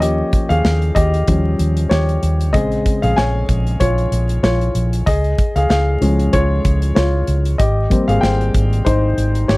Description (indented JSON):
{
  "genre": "piano-driven pop",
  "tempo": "95 BPM",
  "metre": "4/4",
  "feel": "swing 56% on 16ths",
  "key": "Ab major",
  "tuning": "A4 = 441 Hz",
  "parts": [
    { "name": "warm upright piano", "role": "accompaniment", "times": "0.0-9.6 s", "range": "Db3 to Ab5", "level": "-18 LUFS", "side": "left 1 dB", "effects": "none" },
    { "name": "vintage muted fingered electric bass", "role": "bass", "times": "0.0-9.6 s", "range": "Ab1 to Eb2", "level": "-17 LUFS", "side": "equal", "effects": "none" },
    { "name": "modern studio drum kit", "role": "drums", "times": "0.0-9.6 s", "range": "hi-hat, kick drum, snare drum", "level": "-19 LUFS", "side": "equal", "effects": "none" }
  ],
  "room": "small room ambience",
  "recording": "dry, close 1970s-style studio recording, vinyl crackle",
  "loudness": "-14 LUFS",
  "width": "side -22 dB against mid",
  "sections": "0.0-9.6 A section",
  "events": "upright piano solo 0.0-9.6",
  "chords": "0.0 Eb7; 2.5 Bbm7; 5.1 Db; 7.6 Abmaj7"
}